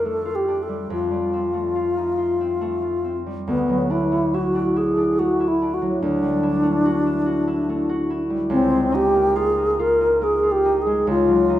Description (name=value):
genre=classical, impressionist duo for alto flute and harp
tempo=70 BPM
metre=3/4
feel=rubato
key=unclear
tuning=A4 = 440 Hz
part: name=mellow wooden-headed alto flute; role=melody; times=0.0-11.6 s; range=B3 to A#4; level=-20 LUFS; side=left 1 dB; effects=none
part: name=concert harp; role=accompaniment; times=0.0-11.6 s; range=C#2 to F#4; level=-24 LUFS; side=right 1 dB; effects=none
room=wet recital hall reverb, RT60 1.5 s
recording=minimal, uncompressed stereo recording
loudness=-18 LUFS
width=side -12 dB against mid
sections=0.0-11.6 A section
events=none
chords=0.0 F69; 0.9 G9sus4/F; 3.5 Dadd9; 6.0 Em11/D; 8.5 C#69; 11.1 Ebm11/Db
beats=0.07 | 0.92 1.77 2.62 | 3.48 4.33 5.19 | 6.01 6.84 7.69 | 8.53 9.37 10.23 | 11.09